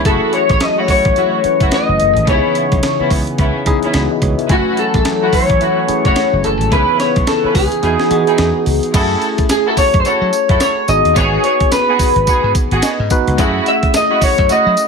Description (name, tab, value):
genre	R&B, new jack swing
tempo	108 BPM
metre	4/4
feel	swing 60% on 16ths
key	F# dorian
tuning	A4 = 440 Hz
part	tine electric piano	accompaniment	0.0-14.9 s	A3 to G#5	-21 LUFS	left 2 dB	medium stereo tremolo
part	chorused pulse-width pad	sustained chords	0.0-8.9 s	C#3 to G#4	-23 LUFS	right 1 dB	none
part	muted studio string section	stabs	0.0-14.6 s	A3 to B4	-20 LUFS	right 1 dB	none
part	electric guitar through a small old amp	melody	0.1-14.9 s	F#4 to E5	-14 LUFS	left 2 dB	lush chorus
part	slap bass	bass	0.1-14.7 s	F#1 to F#3	-19 LUFS	equal	none
part	breakbeat sampler-style drum kit	drums	0.1-14.9 s	crash cymbal, hi-hat, kick drum, snare drum, tambourine	-18 LUFS	right 1 dB	none
room	light reverb, digital ambience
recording	none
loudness	-11 LUFS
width	side -5 dB against mid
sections	0.0-8.9 A section; 8.9-14.9 B section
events	kick muted 7.8-8.9; tine electric piano fill 12.6-13.4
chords	0.1 F#m7; 2.3 C#m7; 4.5 F#m7; 6.7 C#m7; 7.8 Emaj7; 8.9 F#m7; 10.9 G#m7; 13.4 F#m7